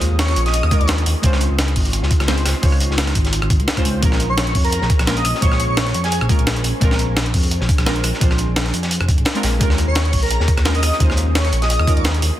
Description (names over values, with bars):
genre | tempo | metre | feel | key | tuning
liquid drum and bass | 172 BPM | 4/4 | swing 54% on 16ths | unclear | A4 = 441 Hz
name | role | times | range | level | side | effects
deep mellow chord stab | accompaniment | 0.0-12.4 s | Ab3 to Db5 | -26 LUFS | equal | chorus, dub echo
glassy FM pad | sustained chords | 0.0-12.4 s | Db4 to C6 | -30 LUFS | left 1 dB | ensemble chorus, built-in reverb, vintage 12-bit sampler grit
smooth synth bass | bass | 0.0-12.3 s | F1 to F2 | -19 LUFS | equal | none
breakbeat sampler-style drum kit | drums | 0.0-12.3 s | hi-hat, rim click, snare drum | -22 LUFS | equal | none
crunchy breakbeat drum kit | drums | 0.0-12.3 s | hi-hat, snare drum | -27 LUFS | equal | high-pass filter on hats, high-pass filter on snare, high-pass filter on room
airy dreamy lead | melody | 0.2-0.9, 4.3-6.2, 9.9-12.1 s | Ab4 to Eb5 | -24 LUFS | equal | chorus, dub echo
electronic kick drum | drums | 0.7-11.9 s | none | -17 LUFS | equal | none
room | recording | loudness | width
light reverb, digital ambience | dense, heavily limited modern master | -15 LUFS | side -13 dB against mid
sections
0.0-12.4 A section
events
none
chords
0.0 Eb9sus4; 1.2 Dbmaj7; 4.0 Bbm7; 6.8 Bb9; 9.6 Eb9sus4